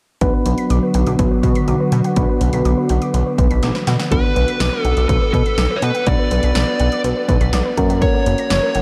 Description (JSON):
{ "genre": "synth-pop", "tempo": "123 BPM", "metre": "4/4", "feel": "straight", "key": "B minor", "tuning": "A4 = 440 Hz", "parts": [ { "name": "soft electric-piano-like synth keys", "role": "accompaniment", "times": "0.2-8.8 s", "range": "A#3 to B4", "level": "-25 LUFS", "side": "equal", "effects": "chorus" }, { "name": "phased analog pad", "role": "sustained chords", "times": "0.2-4.1 s", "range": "D3 to F#4", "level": "-25 LUFS", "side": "equal", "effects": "phaser, chorus" }, { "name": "soft round pluck", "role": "arpeggios", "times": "0.2-8.8 s", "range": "A#4 to B6", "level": "-29 LUFS", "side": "equal", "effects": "chorus, diffuse ambient delay" }, { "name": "chorused synth bass", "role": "bass", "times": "0.2-8.8 s", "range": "F#1 to B2", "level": "-20 LUFS", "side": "equal", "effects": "none" }, { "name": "punchy analog drum machine", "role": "drums", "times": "0.2-8.8 s", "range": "hi-hat, kick drum, snare drum", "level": "-22 LUFS", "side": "equal", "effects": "none" }, { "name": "dark smooth lead guitar", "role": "melody", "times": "4.1-8.8 s", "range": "A4 to D5", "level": "-23 LUFS", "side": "equal", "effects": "overdrive, diffuse ambient delay" } ], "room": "moderate huge ambient reverb, RT60 8.9 s", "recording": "dreamy mix soaked in reverb", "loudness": "-17 LUFS", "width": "mono", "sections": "0.2-4.1 A section; 4.1-8.8 B section", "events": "drum fill 3.6-4.1", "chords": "0.2 Bm; 7.8 F#" }